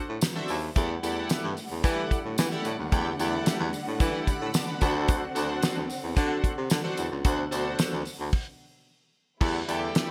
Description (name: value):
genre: early-eighties boogie funk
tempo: 111 BPM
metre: 4/4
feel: straight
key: E minor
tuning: A4 = 443 Hz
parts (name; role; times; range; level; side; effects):
- chorused polysynth; accompaniment; 0.0-10.1 s; D4 to F#6; -35 LUFS; equal; none
- breathy baritone saxophone; bass; 0.1-9.9 s; C#2 to E3; -32 LUFS; equal; none
- damped 70s drum kit; drums; 0.2-10.1 s; crash cymbal, hi-hat, kick drum, snare drum; -30 LUFS; equal; gated reverb
- tambourine; percussion; 0.2-8.2 s; none; -42 LUFS; equal; none
- warm symphonic string section; sustained chords; 0.8-10.1 s; B2 to F#5; -39 LUFS; equal; none
room: light reverb, studio reverb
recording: bright 1980s-style digital production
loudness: -28 LUFS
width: mono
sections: 0.0-9.4 A section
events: stop 8.3-9.4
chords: 0.0 D7; 0.8 Em11; 4.8 D7; 9.4 Em11